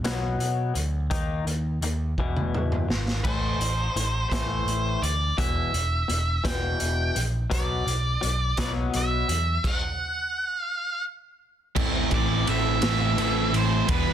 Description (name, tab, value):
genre	quiet-loud alternative rock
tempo	56 BPM (dotted quarters)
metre	6/8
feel	straight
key	A dorian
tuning	A4 = 439 Hz
part	twangy electric guitar	arpeggios	0.0-9.6 s	E2 to D#4	-32 LUFS	left 6 dB	lush chorus, slapback echo
part	overdriven picked electric bass	bass	0.0-14.1 s	E1 to B2	-27 LUFS	equal	none
part	raw garage drum kit	drums	0.0-14.1 s	crash cymbal, hi-hat, kick drum, ride cymbal, snare drum, toms	-29 LUFS	equal	none
part	octave-fuzz lead guitar	melody	3.2-14.1 s	B4 to G5	-28 LUFS	right 2 dB	distortion, slapback echo
part	cranked stack guitar	riff	11.8-14.1 s	A2 to E4	-27 LUFS	right 14 dB	overdrive
part	thick fuzz guitar	riff	11.8-14.1 s	E2 to A3	-28 LUFS	left 11 dB	distortion
room	studio ambience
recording	dense, heavily limited modern master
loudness	-23 LUFS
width	side -10 dB against mid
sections	0.0-3.2 A section; 3.2-11.8 B section; 11.8-14.1 C section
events	drum fill 2.2-3.2; stop 9.6-11.8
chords	0.0 Bm; 1.1 D#5; 2.2 E; 3.2 Am; 5.4 Em; 7.5 Bm; 9.6 N.C.; 11.8 Am